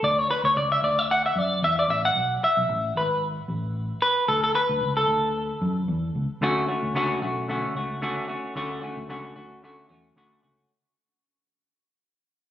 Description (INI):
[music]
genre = indie pop, bedroom pop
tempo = 113 BPM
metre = 4/4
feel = swing 55% on 16ths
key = D lydian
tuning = A4 = 440 Hz
[part]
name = semi-hollow electric guitar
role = accompaniment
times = 0.0-10.7 s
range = D3 to F#5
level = -23 LUFS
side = equal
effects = lush chorus, warbly pitch drift
[part]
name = vintage muted fingered electric bass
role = bass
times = 0.0-10.6 s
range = G#1 to F#2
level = -30 LUFS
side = equal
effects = none
[sound]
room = moderate plate reverb, RT60 3.5 s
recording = recorded on a phone in the room, studio reverb, compression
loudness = -22 LUFS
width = side -11 dB against mid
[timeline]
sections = 0.0-6.4 A section; 6.4-10.7 B section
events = clean electric guitar solo 0.0-6.4; fade-out 6.4-10.7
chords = 0.0 Dmaj7; 2.2 F#m11; 4.3 Dmaj7(no3); 6.4 Dmaj7